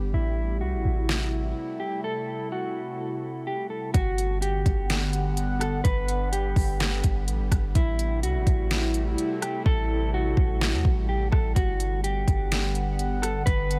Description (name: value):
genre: hip hop, atmospheric cloud-rap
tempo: 126 BPM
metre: 4/4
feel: half-time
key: G major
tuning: A4 = 440 Hz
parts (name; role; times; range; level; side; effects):
- warbly tape-like pad; sustained chords; 0.0-13.8 s; C3 to F#5; -34 LUFS; equal; chorus, built-in reverb, phaser, sidechain pumping, low-pass filter
- clean 808-style bass; bass; 0.0-13.8 s; G1 to E2; -29 LUFS; equal; none
- mellow electric guitar; melody; 0.1-13.8 s; E4 to B4; -34 LUFS; equal; low-pass filter, delay
- smooth R&B drum kit; drums; 1.1-13.8 s; hi-hat, kick drum, rim click, snare drum; -28 LUFS; equal; overdrive
room: little or no reverb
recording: none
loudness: -26 LUFS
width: mono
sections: 0.0-3.9 A section; 3.9-13.8 B section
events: break 2.0-3.9; hi-hats muted 9.7-11.6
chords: 0.1 Am7; 3.9 Gmaj7; 7.8 Am7; 11.6 Gmaj7